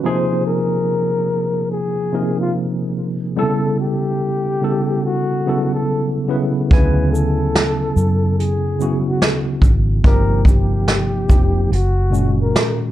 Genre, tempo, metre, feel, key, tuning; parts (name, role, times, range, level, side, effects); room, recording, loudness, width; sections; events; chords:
lo-fi hip hop; 72 BPM; 4/4; swing 64% on 16ths; A4 = 441 Hz
tine electric piano; accompaniment; 0.0-12.9 s; Bb2 to Ab5; -19 LUFS; right 1 dB; overdrive, fast stereo tremolo, cassette tape, low-pass filter
breathy flugelhorn; melody; 0.1-12.8 s; F4 to C5; -23 LUFS; left 3 dB; low-pass filter, plate reverb
vintage muted fingered electric bass; bass; 6.7-12.5 s; F1 to F#2; -18 LUFS; equal
vintage brush drum kit; drums; 6.7-12.8 s; hi-hat, kick drum, shaker, snare drum; -15 LUFS; equal
moderate studio reverb, RT60 0.6 s; dark, warm production; -15 LUFS; side -13 dB against mid
0.0-12.9 A section
0.0 Bbsus2; 3.4 A7; 6.7 Dmaj9; 10.0 F9sus4; 11.7 Gbadd9